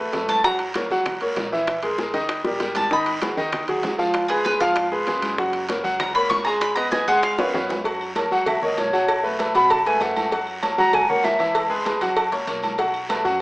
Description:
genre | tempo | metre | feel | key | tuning
Afro-Cuban jazz | 194 BPM | 4/4 | straight | unclear | A4 = 442 Hz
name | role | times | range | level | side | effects
clear grand piano | accompaniment | 0.0-13.4 s | D#3 to G#5 | -22 LUFS | equal | none
upright bass | bass | 0.0-13.4 s | F#1 to B2 | -40 LUFS | equal | none
bongos and cowbell | percussion | 0.1-13.3 s | none | -30 LUFS | left 1 dB | none
congas | percussion | 0.1-13.4 s | none | -36 LUFS | equal | none
guiro | percussion | 0.1-13.4 s | none | -35 LUFS | equal | none
timbales and agogo bells | percussion | 0.1-13.3 s | none | -28 LUFS | right 1 dB | none
bowl-back mandolin | second line | 0.3-0.7, 2.8-7.7 s | G#4 to C#6 | -22 LUFS | equal | none
silver concert flute | melody | 8.3-11.7 s | C#5 to B5 | -20 LUFS | equal | none
room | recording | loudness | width
moderate large studio reverb, RT60 0.9 s | small speaker sound | -19 LUFS | side -21 dB against mid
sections
0.0-7.9 A section; 7.9-13.4 A section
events
mandolin solo 0.0-7.9; drum fill 2.5-2.9, 7.4-7.9; flute solo 7.9-13.4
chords
0.4 F#7; 1.7 Emaj7#11/A#; 2.3 D#; 2.9 G#m7; 4.2 C#7; 5.4 F#add9; 6.6 G#m; 7.2 C#7; 7.9 F#; 9.1 B5; 10.3 F#7; 11.6 C#m7; 12.2 F#; 12.8 B7(no3)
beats
0.14 | 0.45 0.76 1.06 1.37 | 1.68 1.99 2.30 2.61 | 2.92 3.23 3.53 3.84 | 4.15 4.46 4.77 5.08 | 5.38 5.69 6.00 6.31 | 6.62 6.92 7.23 7.54 | 7.85 8.16 8.47 8.78 | 9.09 9.39 9.70 10.01 | 10.32 10.63 10.94 11.24 | 11.55 11.86 12.17 12.48 | 12.79 13.10 13.40

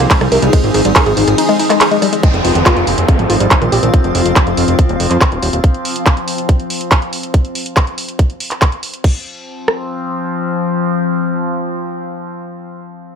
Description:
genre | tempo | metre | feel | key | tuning
psychedelic trance | 141 BPM | 4/4 | straight | F minor | A4 = 440 Hz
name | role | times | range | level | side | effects
overtone-sweeping drone | sustained chords | 0.0-12.5 s | F3 to C4 | -20 LUFS | left 2 dB | chorus, built-in reverb, sidechain pumping
woody wave-folded pluck | riff | 0.0-3.9 s | Eb3 to Bb4 | -17 LUFS | moving between left 6 dB and right 6 dB | chorus, auto-pan, sidechain pumping, dub echo
fat analog bass | bass | 0.0-5.6 s | Eb1 to F2 | -16 LUFS | equal | none
drum and bass drum kit | drums | 0.0-9.1 s | crash cymbal, handclaps, hi-hat, ride cymbal, rim click | -17 LUFS | right 1 dB | small room reverb
granular cloud pad | texture | 0.0-5.6 s | C4 to Eb6 | -19 LUFS | left 2 dB | built-in reverb, sidechain pumping
drum and bass drum kit | drums | 0.1-9.8 s | kick drum, rim click | -11 LUFS | equal | small room reverb
downlifter | sound effects | 2.2-5.6 s | none | -20 LUFS | right 2 dB | none
room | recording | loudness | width
light reverb, digital ambience | none | -11 LUFS | side -7 dB against mid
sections
0.0-2.2 A section; 2.2-9.0 B section; 9.0-12.4 C section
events
drop 0.0-2.2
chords
0.0 Ab5; 2.2 F5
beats
0.11 | 0.53 0.96 1.38 1.81 | 2.23 2.66 3.08 3.51 | 3.94 4.36 4.79 5.21 | 5.64 6.06 6.49 6.91 | 7.34 7.76 8.19 8.62 | 9.04 9.47 9.89 10.32 | 10.74 11.17 11.60 12.02

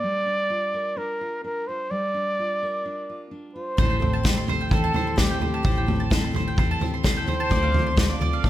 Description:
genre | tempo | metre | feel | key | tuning
indie folk with a building arrangement | 128 BPM | 4/4 | straight | unclear | A4 = 439 Hz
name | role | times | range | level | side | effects
mellow trumpet | melody | 0.0-8.5 s | G4 to D5 | -26 LUFS | right 1 dB | none
fingerpicked steel-string acoustic guitar | accompaniment | 0.0-8.5 s | A2 to Bb4 | -32 LUFS | left 1 dB | none
picked twelve-string acoustic guitar | accompaniment | 3.8-8.5 s | A2 to A4 | -32 LUFS | left 4 dB | none
mandolin | arpeggios | 3.8-8.5 s | C5 to D6 | -30 LUFS | right 5 dB | digital delay
vintage muted fingered electric bass | bass | 3.8-8.5 s | A1 to E2 | -27 LUFS | equal | none
unplugged drum kit | drums | 3.8-8.5 s | kick drum, snare drum, toms | -22 LUFS | equal | none
room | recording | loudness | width
moderate large studio reverb, RT60 1.2 s | none | -21 LUFS | side -13 dB against mid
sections
0.0-3.8 A section; 3.8-8.5 A section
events
none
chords
0.0 Gm7; 3.8 Am7; 7.5 Dm7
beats
| 0.03 0.50 0.97 1.44 | 1.91 2.38 2.85 3.31 | 3.78 4.25 4.72 5.18 | 5.65 6.11 6.58 7.04 | 7.51 7.97 8.44

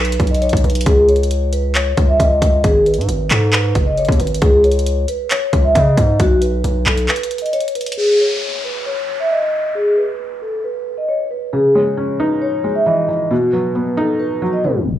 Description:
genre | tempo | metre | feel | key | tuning
hip hop, trap | 135 BPM | 4/4 | half-time | C# minor | A4 = 437 Hz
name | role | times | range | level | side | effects
vibraphone with soft mallets | melody | 0.0-15.0 s | F#4 to E5 | -17 LUFS | equal | low-pass filter
distorted 808-style bass | bass | 0.0-7.1 s | F#1 to C#3 | -17 LUFS | equal | distortion
trap drum kit | drums | 0.0-8.0 s | handclaps, hi-hat, kick drum | -17 LUFS | equal | none
downlifter | sound effects | 8.0-11.5 s | none | -26 LUFS | equal | none
felt-muted upright piano | accompaniment | 11.5-15.0 s | B2 to D#4 | -18 LUFS | equal | low-pass filter
room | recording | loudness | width
digital ambience | dry, gritty hardware recording, tape stop, studio reverb | -14 LUFS | side -12 dB against mid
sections
0.0-8.0 A section; 8.0-15.0 B section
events
break 7.1-8.0; filter sweep 8.0-15.0; tape stop 14.6-15.0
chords
0.0 Bsus2; 0.9 C#sus2; 2.6 G#m; 4.4 C#sus2; 6.2 N.C.; 11.5 C#madd9; 13.3 B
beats
0.42 | 0.86 1.31 1.75 2.20 | 2.64 3.09 3.53 3.98 | 4.42 4.86 5.31 5.75 | 6.20 6.64 7.09 7.53 | 7.97 8.42 8.86 9.31 | 9.75 10.20 10.64 11.09 | 11.53 11.97 12.42 12.86 | 13.31 13.75 14.20 14.64

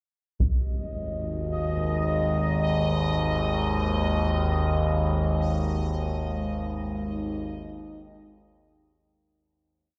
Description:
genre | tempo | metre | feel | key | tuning
dark ambient drone | free time | none | none | unclear | A4 = 440 Hz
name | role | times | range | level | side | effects
overtone-sweeping drone | drone | 0.7-9.4 s | G#1 to D#2 | -28 LUFS | equal | chorus, built-in reverb
taiko ensemble | percussion | 0.4-0.6 s | none | -29 LUFS | equal | low-pass filter on perc
bubbling stepped-filter texture | texture | 0.8-9.3 s | D#5 | -34 LUFS | equal | chorus, built-in reverb
deep dark ambient pad | sustained chords | 6.0-9.3 s | G#3 to D#5 | -39 LUFS | equal | chorus, built-in reverb
room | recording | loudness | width
wet huge ambient reverb, RT60 8.2 s | dark, warm production | -27 LUFS | mono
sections
0.4-9.3 A section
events
fade-out on synth texture 0.4-9.3; fade-out 4.8-9.3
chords
0.4 G#5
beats
free time

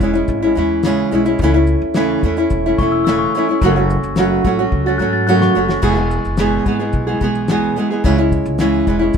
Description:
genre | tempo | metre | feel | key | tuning
acoustic pop | 108 BPM | 4/4 | straight | E major | A4 = 440 Hz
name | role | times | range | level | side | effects
nylon-string guitar | accompaniment | 0.0-9.2 s | E2 to G#4 | -15 LUFS | right 1 dB | none
upright bass | bass | 0.0-9.2 s | E1 to G#2 | -20 LUFS | equal | none
cloth-damped thuddy drum kit | drums | 0.0-9.2 s | crash cymbal, kick drum, shaker, snare drum | -20 LUFS | left 2 dB | none
glockenspiel with rubber mallets | second line | 2.8-5.8 s | C#6 to A6 | -23 LUFS | left 5 dB | none
room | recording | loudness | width
little or no reverb | minimal, uncompressed stereo recording | -13 LUFS | side -7 dB against mid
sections
0.0-9.2 A section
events
drum fill 4.7-5.8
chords
0.0 C#m; 1.4 A/C#; 3.6 F#m; 5.8 E; 8.0 C#m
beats
0.29 0.84 | 1.40 1.95 2.50 3.06 | 3.61 4.17 4.72 5.27 | 5.83 6.38 6.93 7.49 | 8.04 8.59 9.14

